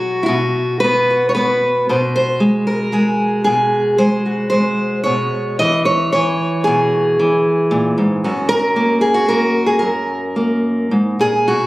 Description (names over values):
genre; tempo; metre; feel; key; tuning
folk, solo fingerstyle acoustic guitar; 113 BPM; 3/4; rubato; unclear; A4 = 440 Hz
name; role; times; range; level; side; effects
fingerpicked steel-string acoustic guitar; solo; 0.0-11.7 s; F#2 to D#5; -14 LUFS; equal; none
room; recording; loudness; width
moderate recital hall reverb, RT60 1.4 s; recorded on a phone in the room, club reverb, compression; -14 LUFS; side -18 dB against mid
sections
0.0-11.5 A section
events
none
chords
0.0 B5; 1.9 G#7/B; 5.1 C#m/B; 8.2 F#